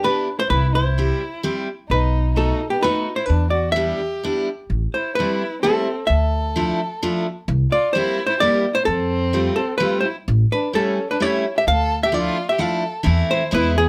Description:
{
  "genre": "musette waltz",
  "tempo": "129 BPM",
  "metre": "3/4",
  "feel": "straight",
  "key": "E minor, A minor from 4.7 s",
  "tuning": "A4 = 441 Hz",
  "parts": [
    { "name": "archtop guitar, miked and amplified", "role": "melody", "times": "0.0-13.9 s", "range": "G4 to F5", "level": "-23 LUFS", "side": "equal", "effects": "none" },
    { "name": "warm violin", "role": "second line", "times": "0.0-13.9 s", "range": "B3 to A4", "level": "-30 LUFS", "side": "equal", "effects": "none" },
    { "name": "picked steel-string acoustic guitar", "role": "accompaniment", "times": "0.0-13.8 s", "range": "E3 to G4", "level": "-25 LUFS", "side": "equal", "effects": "none" },
    { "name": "upright bass", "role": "bass", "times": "0.5-13.9 s", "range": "A1 to F2", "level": "-22 LUFS", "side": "equal", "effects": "none" }
  ],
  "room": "light reverb",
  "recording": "none",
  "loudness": "-20 LUFS",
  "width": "mono",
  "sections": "0.0-4.7 A section; 4.7-13.9 B section",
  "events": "none",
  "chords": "0.0 Em7; 0.5 C; 1.9 B7; 3.3 Em7; 4.7 Am7; 6.1 Dmadd9; 7.5 C7; 8.9 Fadd9; 10.3 A7; 11.7 Dmadd9; 13.1 Am/E",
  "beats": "0.03 | 0.50 0.97 1.43 | 1.90 2.36 2.83 | 3.29 3.76 4.23 | 4.71 5.17 5.64 | 6.10 6.56 7.02 | 7.48 7.94 8.41 | 8.87 9.34 9.81 | 10.28 10.74 11.21 | 11.67 12.14 12.60 | 13.06 13.53"
}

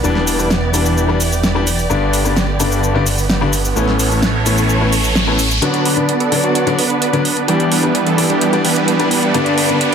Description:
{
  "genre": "EDM, festival progressive house",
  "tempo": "129 BPM",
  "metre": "4/4",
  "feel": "straight",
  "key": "B minor",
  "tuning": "A4 = 438 Hz",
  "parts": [
    { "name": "clear grand piano", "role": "accompaniment", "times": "0.0-9.8 s", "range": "G2 to D4", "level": "-18 LUFS", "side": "left 4 dB", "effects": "tape echo" },
    { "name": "dark chamber string section", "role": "sustained chords", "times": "0.0-9.9 s", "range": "D3 to D5", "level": "-21 LUFS", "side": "right 3 dB", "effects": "none" },
    { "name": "fat analog bass", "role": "bass", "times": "0.0-5.6 s", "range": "E1 to A1", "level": "-19 LUFS", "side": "right 1 dB", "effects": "none" },
    { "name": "pop drum kit", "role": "drums", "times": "0.0-9.9 s", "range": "hi-hat, shaker, snare drum", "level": "-20 LUFS", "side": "right 1 dB", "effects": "overdrive" },
    { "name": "riser", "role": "sound effects", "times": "3.2-9.9 s", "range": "none", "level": "-25 LUFS", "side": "right 2 dB", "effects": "none" },
    { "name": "supersaw chords", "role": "riff", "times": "5.6-9.9 s", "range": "E3 to B4", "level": "-16 LUFS", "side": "right 2 dB", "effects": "low-pass filter, tape echo" }
  ],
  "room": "light reverb",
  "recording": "dense, heavily limited modern master, high-pass filter",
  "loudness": "-13 LUFS",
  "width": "side -7 dB against mid",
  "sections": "0.0-5.6 A section; 5.6-9.9 B section",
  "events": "riser 3.2-5.6; build-up 5.6-9.9; filter sweep on supersaw synth 5.6-9.9",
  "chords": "0.0 Em7; 1.9 G; 3.8 Aadd9; 5.6 Bm; 7.5 Em7; 9.3 G",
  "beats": "| 0.04 0.51 0.97 1.44 | 1.90 2.37 2.83 3.30 | 3.76 4.23 4.69 5.16 | 5.62 6.09 6.55 7.02 | 7.48 7.95 8.41 8.88 | 9.34 9.81"
}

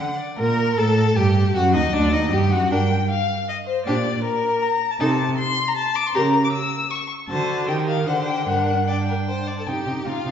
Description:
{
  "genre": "quick classical-period movement for string quartet",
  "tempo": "156 BPM",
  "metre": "3/4",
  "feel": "straight",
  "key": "G minor",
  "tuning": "A4 = 439 Hz",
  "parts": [
    { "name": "rich violin", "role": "melody", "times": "0.0-10.3 s", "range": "Bb4 to E6", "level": "-23 LUFS", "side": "left 5 dB", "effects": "none" },
    { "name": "clear violin", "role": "second line", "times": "0.0-10.3 s", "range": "D4 to F#5", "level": "-28 LUFS", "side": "equal", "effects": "none" },
    { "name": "rich cello", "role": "bass", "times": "0.0-10.3 s", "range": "D2 to Eb3", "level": "-22 LUFS", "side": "right 2 dB", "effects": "none" },
    { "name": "warm viola", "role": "accompaniment", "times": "0.4-10.3 s", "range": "D4 to Bb4", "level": "-27 LUFS", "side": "right 1 dB", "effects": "none" }
  ],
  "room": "wet scoring stage reverb, RT60 1.6 s",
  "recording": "heard from further back in the room, nothing above 7.7 kHz",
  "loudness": "-18 LUFS",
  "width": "side -8 dB against mid",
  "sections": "0.4-9.7 A section",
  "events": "none",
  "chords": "0.0 D; 0.4 Gm; 1.6 D; 2.7 G5; 3.9 Gm/Bb (rootless); 5.0 Adim/C; 6.1 C#dim7; 7.3 D7; 7.7 Eb; 8.1 D7(no3); 8.5 Gm; 9.7 Cm",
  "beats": "| 0.39 0.78 1.17 | 1.55 1.94 2.32 | 2.71 3.09 3.48 | 3.86 4.24 4.62 | 5.00 5.38 5.76 | 6.14 6.52 6.91 | 7.29 7.68 8.07 | 8.47 8.87 9.27 | 9.67 10.06"
}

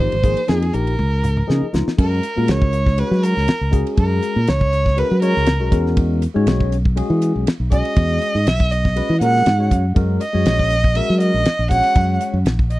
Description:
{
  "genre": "electric jazz fusion",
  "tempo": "120 BPM",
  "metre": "4/4",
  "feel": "swing 54% on 16ths",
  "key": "F# mixolydian",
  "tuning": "A4 = 438 Hz",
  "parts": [
    { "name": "warm violin", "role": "melody", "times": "0.0-12.8 s", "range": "Ab4 to F#5", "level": "-21 LUFS", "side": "right 2 dB", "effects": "slapback echo" },
    { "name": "tine electric piano", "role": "accompaniment", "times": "0.0-12.4 s", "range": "F3 to Eb5", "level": "-24 LUFS", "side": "left 3 dB", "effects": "phaser" },
    { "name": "modern bright fingered electric bass", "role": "bass", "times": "0.0-12.8 s", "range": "Ab1 to F#3", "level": "-18 LUFS", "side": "equal", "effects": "none" },
    { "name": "damped 70s drum kit", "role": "drums", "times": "0.1-12.8 s", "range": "crash cymbal, hi-hat, kick drum, ride cymbal, snare drum, toms", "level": "-18 LUFS", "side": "equal", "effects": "none" }
  ],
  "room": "little or no reverb",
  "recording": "dry, close 1970s-style studio recording",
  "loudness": "-15 LUFS",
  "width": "side -17 dB against mid",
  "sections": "0.0-2.0 A section; 2.0-12.8 B section",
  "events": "drum fill 1.0-2.0; tine electric piano fill 1.2-2.0; violin solo 2.0-12.8",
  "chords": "0.0 Abmaj13; 0.7 Bbsus4; 1.0 Dbadd9; 2.0 F#add9; 5.7 Emaj9; 10.0 D#m7",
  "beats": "0.49 0.99 1.49 | 1.99 2.48 2.98 3.48 | 3.98 4.48 4.98 5.47 | 5.97 6.47 6.97 7.47 | 7.97 8.46 8.96 9.46 | 9.96 10.46 10.96 11.46 | 11.96 12.46"
}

